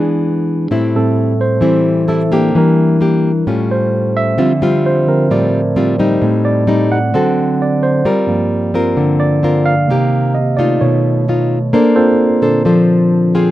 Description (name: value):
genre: bossa nova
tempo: 130 BPM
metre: 4/4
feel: straight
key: D minor, G minor from 8.1 s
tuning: A4 = 440 Hz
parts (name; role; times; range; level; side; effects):
- barky tine electric piano; accompaniment; 0.0-13.5 s; G2 to F#5; -15 LUFS; right 2 dB; none
- nylon-string guitar; accompaniment; 0.0-13.5 s; A2 to C5; -13 LUFS; left 2 dB; none
room: small room ambience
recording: rough home demo mix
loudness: -11 LUFS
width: side -14 dB against mid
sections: 0.0-8.1 A section; 8.1-13.5 A section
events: tine electric piano solo 0.0-13.5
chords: 0.0 E7; 0.7 Am7; 2.5 Em7b5; 3.5 A7alt; 4.4 Dm11; 6.2 Am7b5; 7.1 D7; 8.1 Gm7; 9.9 Cm7; 10.8 B7#11; 11.7 Bbmaj9